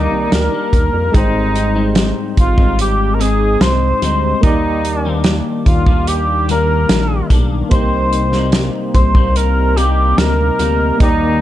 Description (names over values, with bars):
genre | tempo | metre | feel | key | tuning
indie pop, bedroom pop | 73 BPM | 4/4 | straight | unclear | A4 = 440 Hz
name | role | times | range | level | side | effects
dark cor anglais | melody | 0.0-11.4 s | Eb4 to C5 | -18 LUFS | equal | analog chorus, analog delay
clean electric guitar | accompaniment | 0.0-11.4 s | Ab2 to Eb4 | -20 LUFS | left 5 dB | analog chorus, warbly pitch drift
soft electric-piano-like synth keys | accompaniment | 0.0-11.4 s | G3 to G5 | -24 LUFS | right 3 dB | chorus, tremolo
warm analog pad | sustained chords | 0.0-1.1 s | G4 to D6 | -31 LUFS | right 1 dB | none
chorused synth bass | bass | 0.0-11.4 s | Ab1 to F2 | -17 LUFS | equal | none
loose indie drum kit | drums | 0.3-11.2 s | hi-hat, kick drum, snare drum | -14 LUFS | equal | vintage 12-bit sampler grit
room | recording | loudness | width
light reverb | none | -12 LUFS | side -13 dB against mid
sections
0.0-1.1 A section; 1.1-11.4 B section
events
none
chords
0.0 Ebmaj7; 1.1 Abmaj7; 4.4 Ebmaj7; 7.7 Cm7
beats
0.33 | 1.15 1.97 2.79 3.61 | 4.43 5.25 6.07 6.89 | 7.71 8.54 9.36 10.18 | 11.00